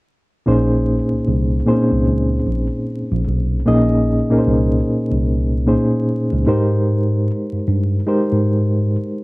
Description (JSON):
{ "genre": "R&B", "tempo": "75 BPM", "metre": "4/4", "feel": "swing 61% on 16ths", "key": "Bb dorian", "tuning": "A4 = 440 Hz", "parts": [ { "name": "reed electric piano", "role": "accompaniment", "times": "0.5-9.2 s", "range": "Bb2 to Eb5", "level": "-17 LUFS", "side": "equal", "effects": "fast tremolo" }, { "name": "tine electric piano", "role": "bass", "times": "0.5-8.9 s", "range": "Bb1 to Ab2", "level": "-18 LUFS", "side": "equal", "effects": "overdrive, fast stereo tremolo" } ], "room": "light reverb", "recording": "dry, close 1970s-style studio recording, vinyl crackle", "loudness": "-15 LUFS", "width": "side -22 dB against mid", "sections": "0.5-9.2 A section", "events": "none", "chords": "0.5 Bbm11; 6.5 Abmaj9", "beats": "| 0.46 1.26 2.06 2.86 | 3.66 4.46 5.26 6.06 | 6.86 7.66 8.46" }